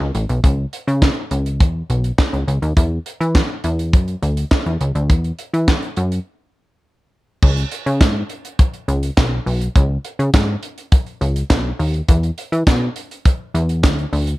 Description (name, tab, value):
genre	early-eighties boogie funk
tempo	103 BPM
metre	4/4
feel	straight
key	C# minor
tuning	A4 = 440 Hz
part	plucky analog bass	bass	0.0-14.3 s	A1 to E3	-18 LUFS	equal	none
part	tight funk drum kit	drums	0.1-14.4 s	crash cymbal, handclaps, hi-hat, kick drum, snare drum	-16 LUFS	equal	gated reverb
room	little or no reverb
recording	none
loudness	-16 LUFS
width	side -19 dB against mid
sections	0.0-7.4 A section; 7.4-14.4 B section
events	break 6.3-7.4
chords	none